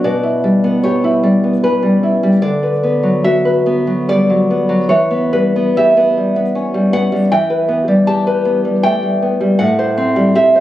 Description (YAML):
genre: romantic piece for solo classical guitar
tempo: 66-82 BPM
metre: 3/4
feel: rubato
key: E minor from 7.3 s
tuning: A4 = 440 Hz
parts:
  - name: nylon-string guitar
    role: solo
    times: 0.0-10.6 s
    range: A2 to A5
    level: -11 LUFS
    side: equal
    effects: none
room: moderate recital hall reverb, RT60 1.7 s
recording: recorded on a phone in the room, studio ambience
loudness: -12 LUFS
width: side -13 dB against mid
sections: 0.0-10.6 A section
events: none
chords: 0.0 Em7/B; 2.4 Bm/D; 4.9 Em; 9.6 Am7